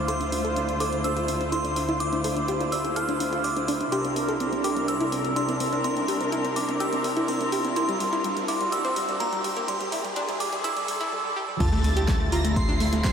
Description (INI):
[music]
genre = progressive house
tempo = 125 BPM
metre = 4/4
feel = straight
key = D minor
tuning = A4 = 439 Hz
[part]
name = glassy synth bell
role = melody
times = 0.0-13.1 s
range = A5 to F6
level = -29 LUFS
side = equal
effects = chorus, sidechain pumping, diffuse ambient delay
[part]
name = muted chamber string section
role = sustained chords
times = 0.0-13.1 s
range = C2 to C5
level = -29 LUFS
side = equal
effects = sidechain pumping
[part]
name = analog pluck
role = arpeggios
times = 0.0-13.1 s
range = G3 to A4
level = -29 LUFS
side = equal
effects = chorus, sidechain pumping, diffuse ambient delay
[part]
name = riser and sub drop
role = sound effects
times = 0.4-13.1 s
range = none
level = -35 LUFS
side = equal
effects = none
[part]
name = deep house drum kit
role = drums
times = 0.1-13.1 s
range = crash cymbal, hi-hat, snare drum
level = -36 LUFS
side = equal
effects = sidechain pumping on hats, sidechain pumping on cymbals
[part]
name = dark symphonic violin section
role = second line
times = 11.6-13.1 s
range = A6 to C7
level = -33 LUFS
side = right 2 dB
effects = sidechain pumping, diffuse ambient delay
[part]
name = tight sequencer bass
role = bass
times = 11.6-13.1 s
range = D2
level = -26 LUFS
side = equal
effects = sidechain pumping
[part]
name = dusty soul sampler-style drum kit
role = drums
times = 11.6-13.1 s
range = hi-hat, snare drum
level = -42 LUFS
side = equal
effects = none
[part]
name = electronic kick drum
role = drums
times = 11.6-13.1 s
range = none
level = -26 LUFS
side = equal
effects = none
[sound]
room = wet huge ambient reverb, RT60 7.6 s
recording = dreamy mix soaked in reverb, high-pass filter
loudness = -23 LUFS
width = side -7 dB against mid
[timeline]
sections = 0.0-11.6 A section; 11.6-13.1 B section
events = build-up 0.0-11.6; filter sweep on synth pluck 0.0-11.6; riser 0.4-11.1; drop 11.6-13.1; impact 11.6-13.1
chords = 0.0 Dm7; 3.9 C7; 11.6 Dm7